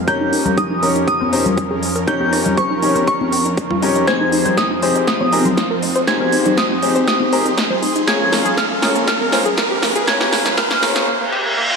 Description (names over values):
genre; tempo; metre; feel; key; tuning
progressive house; 120 BPM; 4/4; straight; unclear; A4 = 439 Hz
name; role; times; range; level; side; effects
glassy synth bell; melody; 0.0-11.0 s; Db6 to Ab6; -21 LUFS; right 2 dB; chorus, tremolo, vintage 12-bit sampler grit, low-pass filter, dub echo
supersaw pad; sustained chords; 0.0-11.0 s; F2 to C6; -24 LUFS; right 2 dB; sidechain pumping
analog pluck; arpeggios; 0.0-11.8 s; Bb3 to Db5; -23 LUFS; equal; chorus, sidechain pumping, dub echo
riser and reverse cymbal; sound effects; 0.2-11.8 s; none; -24 LUFS; right 1 dB; none
bright baby grand piano; stabs; 0.1-11.1 s; C4 to Db5; -20 LUFS; left 3 dB; sidechain pumping, dub echo
big-room dance drum kit; drums; 0.1-11.1 s; hi-hat, rim click, snare drum; -21 LUFS; equal; none
electronic kick drum; drums; 0.1-10.7 s; none; -24 LUFS; equal; high-pass filter on kick
congas; percussion; 0.5-11.1 s; none; -24 LUFS; left 4 dB; sidechain pumping on perc
room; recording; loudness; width
moderate concert hall reverb, RT60 2.0 s; dark, warm production, high-pass filter; -14 LUFS; side -5 dB against mid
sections
0.0-11.8 A section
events
build-up 0.0-11.8; filter sweep on synth arpeggio sound 0.0-11.8; filter sweep 0.0-11.8; riser 0.2-11.1; drum fill 4.1-11.1; reverse cymbal 11.1-11.8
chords
0.1 Eb7/F; 8.1 Bbm7/F